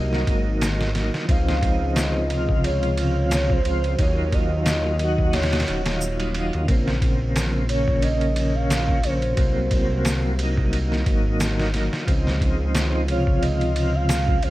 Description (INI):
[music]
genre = trip hop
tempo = 89 BPM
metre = 4/4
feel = swing 55% on 16ths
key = unclear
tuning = A4 = 440 Hz
[part]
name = pure breathy sine lead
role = melody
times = 0.0-14.5 s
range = C5 to F5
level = -29 LUFS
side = right 1 dB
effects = wide subtle chorus, tape echo
[part]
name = tonewheel organ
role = accompaniment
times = 0.0-14.5 s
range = C3 to Gb4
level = -26 LUFS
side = equal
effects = chorus vibrato, slow rotary speaker, tremolo, vintage 12-bit sampler grit, tape echo
[part]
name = dark detuned saw bass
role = bass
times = 0.0-14.5 s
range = Eb1 to Eb2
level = -23 LUFS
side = equal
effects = none
[part]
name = trip hop sampler-style drum kit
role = drums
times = 0.1-14.5 s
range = kick drum, ride cymbal, snare drum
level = -24 LUFS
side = equal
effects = none
[part]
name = tube shaker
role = percussion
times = 0.6-14.2 s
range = none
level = -34 LUFS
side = right 2 dB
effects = none
[sound]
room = digital ambience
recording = vinyl crackle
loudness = -19 LUFS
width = side -16 dB against mid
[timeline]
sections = 0.0-14.5 A section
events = break 5.3-6.7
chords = 0.0 Ab7; 1.3 Dbmaj7; 4.0 Ebmadd9; 6.7 Bbmadd9; 9.4 Ab7/C; 12.1 Dbmaj7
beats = 0.62 | 1.29 1.97 2.64 3.31 | 3.99 4.66 5.34 6.01 | 6.68 7.36 8.03 8.71 | 9.38 10.05 10.73 11.40 | 12.08 12.75 13.43 14.10